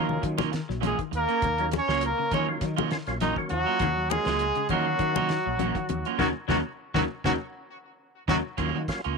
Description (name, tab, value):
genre	afrobeat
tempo	100 BPM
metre	4/4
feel	swing 53% on 16ths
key	Eb minor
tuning	A4 = 440 Hz
part	warm trumpet	melody	0.0-8.4 s	Eb4 to Db5	-29 LUFS	left 3 dB	tape echo
part	bright trombone	second line	0.0-8.4 s	Eb3 to Db4	-32 LUFS	right 13 dB	none
part	percussive tonewheel organ	accompaniment	0.0-9.0 s	Gb3 to F5	-34 LUFS	equal	slow rotary speaker, chorus vibrato
part	electric guitar at the edge of break-up	stabs	0.0-9.2 s	Gb3 to F4	-32 LUFS	right 14 dB	wide subtle chorus
part	mellow fretless electric bass	bass	0.0-9.2 s	Bb1 to Eb3	-32 LUFS	equal	ensemble chorus
part	semi-hollow electric guitar	arpeggios	0.1-8.9 s	Db3 to Gb3	-33 LUFS	left 14 dB	none
part	congas	percussion	0.1-8.4 s	none	-32 LUFS	left 11 dB	none
part	damped 70s drum kit	drums	0.2-9.2 s	hi-hat, kick drum, snare drum	-34 LUFS	right 1 dB	none
room	light reverb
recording	1960s-style stereo with parts hard left and right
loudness	-24 LUFS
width	side -4 dB against mid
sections	0.0-8.6 A section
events	band accent 6.2-8.6; drum fill 7.4-8.6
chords	0.0 Ebm9